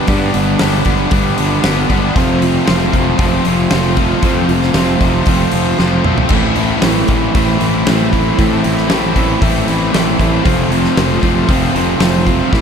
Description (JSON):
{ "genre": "classic rock", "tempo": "116 BPM", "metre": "4/4", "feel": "straight", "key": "unclear", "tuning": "A4 = 440 Hz", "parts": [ { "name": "picked steel-string acoustic guitar", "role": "accompaniment", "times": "0.0-12.6 s", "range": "F2 to G4", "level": "-21 LUFS", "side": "right 4 dB", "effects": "none" }, { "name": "cranked stack guitar", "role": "riff", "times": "0.0-12.6 s", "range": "F2 to G4", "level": "-18 LUFS", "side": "left 14 dB", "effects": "overdrive" }, { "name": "cranked stack guitar", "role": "riff", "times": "0.0-12.6 s", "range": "G2 to F4", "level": "-18 LUFS", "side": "right 13 dB", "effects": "overdrive" }, { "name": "fuzz fingered electric bass", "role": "bass", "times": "0.1-12.6 s", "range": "F1 to A2", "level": "-18 LUFS", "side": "equal", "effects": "overdrive" }, { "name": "big rock drum kit", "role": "drums", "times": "0.1-12.6 s", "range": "crash cymbal, hi-hat, kick drum, snare drum, splash cymbal, toms", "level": "-17 LUFS", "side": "equal", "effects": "none" }, { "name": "fuzz guitar", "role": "riff", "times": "6.3-12.6 s", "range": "F2 to A3", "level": "-20 LUFS", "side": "left 1 dB", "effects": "distortion" } ], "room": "small room ambience", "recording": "none", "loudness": "-11 LUFS", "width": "side -7 dB against mid", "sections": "0.0-12.6 A section", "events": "drum fill 5.8-6.3", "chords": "0.0 G; 2.2 F; 6.3 Am; 10.5 F", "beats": "| 0.08 0.60 1.11 1.63 | 2.15 2.67 3.19 3.71 | 4.23 4.75 5.26 5.78 | 6.30 6.82 7.34 7.86 | 8.38 8.90 9.41 9.93 | 10.45 10.97 11.49 12.01 | 12.53" }